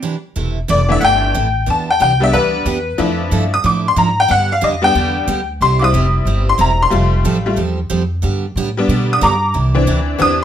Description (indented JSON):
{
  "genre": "country, western swing",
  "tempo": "183 BPM",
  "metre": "4/4",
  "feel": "swing 64% on 8ths",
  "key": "C major",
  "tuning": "A4 = 436 Hz",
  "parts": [
    { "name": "picked steel-string acoustic guitar", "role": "accompaniment", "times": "0.0-10.4 s", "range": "C3 to A4", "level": "-22 LUFS", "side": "right 5 dB", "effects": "none" },
    { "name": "upright bass", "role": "bass", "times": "0.4-10.4 s", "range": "E1 to B2", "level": "-18 LUFS", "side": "equal", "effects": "none" },
    { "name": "tack piano", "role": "accompaniment", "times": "0.7-10.4 s", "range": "E3 to Eb6", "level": "-14 LUFS", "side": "left 2 dB", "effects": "none" }
  ],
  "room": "moderate studio reverb, RT60 0.7 s",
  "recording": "none",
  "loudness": "-13 LUFS",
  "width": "side -10 dB against mid",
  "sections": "0.4-10.4 A section",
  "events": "break 0.0-0.4; honky-tonk piano solo 0.4-10.4",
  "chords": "0.4 C6; 1.7 Em7; 3.0 Dmadd9/F; 4.3 G; 5.6 C; 6.9 Fadd9; 8.2 G; 9.5 Cadd9",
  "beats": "0.04 | 0.36 0.69 1.02 1.35 | 1.67 2.00 2.33 2.66 | 2.99 3.31 3.64 3.97 | 4.30 4.62 4.95 5.28 | 5.61 5.94 6.26 6.59 | 6.92 7.25 7.58 7.90 | 8.23 8.56 8.89 9.22 | 9.54 9.87 10.20"
}